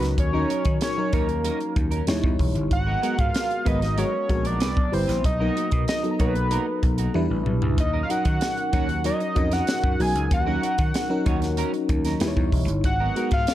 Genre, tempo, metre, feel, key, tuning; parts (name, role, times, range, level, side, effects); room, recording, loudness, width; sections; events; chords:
polished 1980s jazz-funk pop; 95 BPM; 4/4; straight; Eb minor; A4 = 440 Hz
fat analog lead; melody; 0.0-13.5 s; Bb4 to Ab5; -27 LUFS; equal; chorus
FM electric piano; accompaniment; 0.0-13.5 s; Gb3 to A#5; -27 LUFS; left 2 dB; analog chorus
clean electric guitar; riff; 0.0-13.5 s; Gb3 to Db5; -34 LUFS; right 6 dB; analog chorus
vintage slap bass; bass; 0.0-13.4 s; Fb1 to Eb3; -26 LUFS; equal
crisp fusion drum kit; drums; 0.0-13.5 s; hi-hat, kick drum, snare drum, toms; -25 LUFS; equal
light reverb, studio ambience; dark, warm production; -21 LUFS; side -13 dB against mid
0.0-13.5 A section
drum fill 7.1-7.8
0.0 Ebm7; 2.1 Eb7b9; 2.7 Abm9; 4.6 Cmaj7; 5.2 Bmaj7; 7.1 Em7; 7.8 Ebm7; 12.2 Eb7b9; 12.8 Abm9